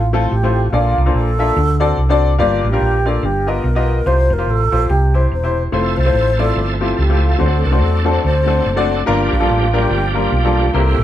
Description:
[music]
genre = gospel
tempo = 144 BPM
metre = 4/4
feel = swing 60% on 8ths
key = unclear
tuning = A4 = 440 Hz
[part]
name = wooden-headed alto flute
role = melody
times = 0.0-11.0 s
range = F4 to C5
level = -20 LUFS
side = right 1 dB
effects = none
[part]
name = hollow-body short-scale fingered electric bass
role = bass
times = 0.0-11.0 s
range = E1 to E2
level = -16 LUFS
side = equal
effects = none
[part]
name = clear upright piano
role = accompaniment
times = 0.1-11.0 s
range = G2 to E5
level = -18 LUFS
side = left 3 dB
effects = none
[part]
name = bright tonewheel organ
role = sustained chords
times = 5.7-11.0 s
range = E3 to A4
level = -22 LUFS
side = right 4 dB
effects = slow rotary speaker, chorus vibrato
[sound]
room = moderate studio reverb, RT60 0.5 s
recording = band playing live in one room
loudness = -13 LUFS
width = side -12 dB against mid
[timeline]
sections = 0.0-11.0 A section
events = none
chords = 0.0 Fmaj7; 0.7 Bbmaj7; 1.6 D7; 2.4 Gm7; 3.2 G7alt; 4.1 Csus4; 4.9 C; 5.7 Fmaj7; 7.4 D7; 9.1 Gm7

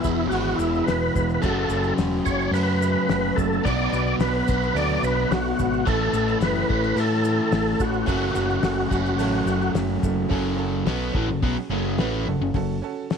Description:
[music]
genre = classic rock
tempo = 108 BPM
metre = 4/4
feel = straight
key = F# minor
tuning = A4 = 441 Hz
[part]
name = overdriven tonewheel organ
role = melody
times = 0.0-9.7 s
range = E4 to D5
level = -25 LUFS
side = equal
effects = slow rotary speaker, chorus vibrato, slapback echo
[part]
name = tack piano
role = accompaniment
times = 0.0-13.2 s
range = G#3 to B4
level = -32 LUFS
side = right 9 dB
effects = none
[part]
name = biting overdriven guitar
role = riff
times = 0.0-12.8 s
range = E2 to B3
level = -29 LUFS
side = left 1 dB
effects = none
[part]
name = overdriven electric guitar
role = riff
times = 0.0-12.8 s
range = E2 to B3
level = -28 LUFS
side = left 9 dB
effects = none
[part]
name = overdriven semi-hollow guitar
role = riff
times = 0.0-12.8 s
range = F#2 to F#4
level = -30 LUFS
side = right 10 dB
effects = none
[part]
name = growling fingered electric bass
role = bass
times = 0.0-12.8 s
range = E1 to A2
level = -27 LUFS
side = equal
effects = overdrive
[part]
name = cloth-damped thuddy drum kit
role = drums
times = 0.0-13.2 s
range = crash cymbal, hi-hat, kick drum, snare drum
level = -28 LUFS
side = left 2 dB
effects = none
[part]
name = tube shaker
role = percussion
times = 0.0-10.2 s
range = none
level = -47 LUFS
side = left 13 dB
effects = none
[sound]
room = light reverb, small room ambience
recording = 1960s-style stereo with parts hard left and right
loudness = -20 LUFS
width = side -6 dB against mid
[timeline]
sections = 0.0-10.3 A section; 10.3-13.2 B section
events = none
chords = 0.0 E; 1.4 F#madd9; 3.6 Bm; 5.9 A; 8.1 F#m

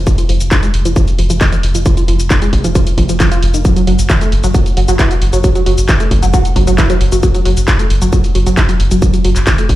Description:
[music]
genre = driving peak-time techno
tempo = 134 BPM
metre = 4/4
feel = straight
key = unclear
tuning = A4 = 439 Hz
[part]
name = saturated sub bass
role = bass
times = 0.0-9.8 s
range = F1 to Gb1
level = -14 LUFS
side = equal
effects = sidechain pumping, low-pass filter
[part]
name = tight sequenced synth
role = riff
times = 0.1-9.7 s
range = Eb3 to F4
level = -17 LUFS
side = right 1 dB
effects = chorus, phaser, overdrive, sidechain pumping, ping-pong delay
[part]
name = electronic kick drum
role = drums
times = 0.1-9.8 s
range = none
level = -12 LUFS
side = equal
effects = distortion
[part]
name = techno drum kit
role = drums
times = 0.1-9.8 s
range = handclaps, hi-hat, shaker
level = -20 LUFS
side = equal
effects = none
[sound]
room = digital ambience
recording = played on a big sound system in a bare room, large studio reverb, faint mains hum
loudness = -10 LUFS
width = side -15 dB against mid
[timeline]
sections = 0.0-9.8 A section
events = none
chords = none

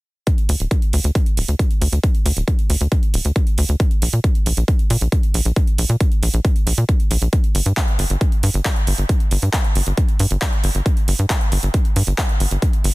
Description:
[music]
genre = uplifting trance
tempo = 136 BPM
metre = 4/4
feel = straight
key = unclear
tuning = A4 = 441 Hz
[part]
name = big-room dance drum kit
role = drums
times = 0.3-12.9 s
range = handclaps, hi-hat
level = -25 LUFS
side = right 2 dB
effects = sidechain pumping on hats
[part]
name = electronic kick drum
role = drums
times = 0.3-12.7 s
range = none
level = -17 LUFS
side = equal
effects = none
[part]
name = tight sequencer bass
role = bass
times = 0.5-12.9 s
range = D1 to Bb2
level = -18 LUFS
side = equal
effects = sidechain pumping
[sound]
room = little or no reverb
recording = dense, heavily limited modern master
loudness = -16 LUFS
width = side -21 dB against mid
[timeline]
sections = 0.3-12.9 A section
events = none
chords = none

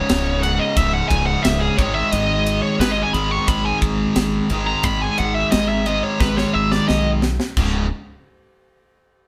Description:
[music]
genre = heavy metal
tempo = 88 BPM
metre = 4/4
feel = straight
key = unclear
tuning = A4 = 440 Hz
[part]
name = high-gain lead guitar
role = melody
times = 0.0-7.1 s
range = G#4 to C#6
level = -24 LUFS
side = equal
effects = distortion
[part]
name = distorted electric guitar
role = riff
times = 0.0-7.9 s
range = C#2 to G#3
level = -28 LUFS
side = equal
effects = distortion
[part]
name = distorted electric guitar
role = riff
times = 0.0-7.9 s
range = C#2 to G#3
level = -26 LUFS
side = equal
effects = overdrive
[part]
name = growling fingered electric bass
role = bass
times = 0.1-7.9 s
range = C#1 to B1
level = -26 LUFS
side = equal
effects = overdrive
[part]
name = tight metal drum kit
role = drums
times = 0.1-7.7 s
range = crash cymbal, kick drum, ride cymbal, snare drum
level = -26 LUFS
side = equal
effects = none
[sound]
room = moderate studio reverb, RT60 0.9 s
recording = band playing live in one room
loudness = -19 LUFS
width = mono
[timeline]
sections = 0.0-7.6 A section; 7.6-9.3 B section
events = lead electric guitar solo 0.0-7.6; drum fill 6.2-7.6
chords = 0.0 C#5; 1.8 G#5; 7.6 C#5

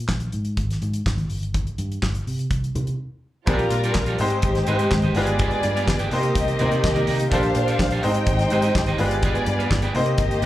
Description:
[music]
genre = disco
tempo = 125 BPM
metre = 4/4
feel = straight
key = Bb major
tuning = A4 = 440 Hz
[part]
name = fingered electric bass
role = bass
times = 0.0-10.5 s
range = G1 to C3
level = -24 LUFS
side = equal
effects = none
[part]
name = damped 70s drum kit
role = drums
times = 0.1-10.5 s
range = handclaps, hi-hat, kick drum, snare drum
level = -25 LUFS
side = equal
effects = none
[part]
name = congas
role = percussion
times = 0.1-10.3 s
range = none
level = -32 LUFS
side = left 2 dB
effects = none
[part]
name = dark studio string section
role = second line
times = 3.5-10.5 s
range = G3 to G5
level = -24 LUFS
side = equal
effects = plate reverb, slapback echo
[part]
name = bright baby grand piano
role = accompaniment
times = 3.5-10.5 s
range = G3 to C5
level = -25 LUFS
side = left 1 dB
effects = plate reverb
[part]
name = electric guitar at the edge of break-up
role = accompaniment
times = 3.5-10.5 s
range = Eb4 to G5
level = -30 LUFS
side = right 4 dB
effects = plate reverb, slapback echo
[sound]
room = light reverb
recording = live gig heard through the venue's PA, club ambience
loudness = -19 LUFS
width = side -14 dB against mid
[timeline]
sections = 0.0-3.5 A section; 3.5-10.5 B section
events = break 3.0-3.5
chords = 0.0 N.C.; 3.5 Bbmaj13; 4.2 Abmaj7; 5.2 G7b9; 6.1 Cm9; 7.3 Bbmaj13; 8.0 Abmaj7; 9.0 G7b9; 9.9 Cm9

